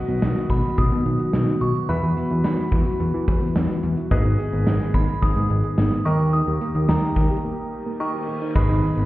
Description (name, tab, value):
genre	synth-pop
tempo	108 BPM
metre	4/4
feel	straight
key	unclear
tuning	A4 = 440 Hz
part	bright grand piano	accompaniment	0.0-9.1 s	F#4 to E5	-33 LUFS	left 1 dB	none
part	warm analog pad	sustained chords	0.0-9.1 s	D#3 to G#4	-27 LUFS	equal	chorus
part	soft round pluck	arpeggios	0.0-9.0 s	D#3 to D#5	-30 LUFS	right 1 dB	chorus, ping-pong delay
part	fat analog bass	bass	0.1-9.1 s	G#1 to E3	-21 LUFS	equal	none
part	gated 80s drum kit	drums	0.1-9.1 s	crash cymbal, hi-hat, kick drum, snare drum	-23 LUFS	equal	none
part	glassy synth bell	melody	0.5-9.1 s	A#5 to D#6	-30 LUFS	right 1 dB	chorus, ping-pong delay
part	reverse cymbal and downlifter	sound effects	7.7-9.1 s	none	-37 LUFS	equal	none
room	light reverb, small room ambience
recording	heard muffled through a wall, stone room reverb, EQ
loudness	-19 LUFS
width	side -16 dB against mid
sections	0.0-8.6 A section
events	break 7.4-8.6; reverse cymbal 7.7-8.6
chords	0.0 B; 1.9 Esus2; 4.1 G#m; 6.1 D#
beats	0.22 0.78 1.33 | 1.89 2.44 3.00 3.56 | 4.11 4.67 5.22 5.78 | 6.33 6.89 7.45 8.00 | 8.56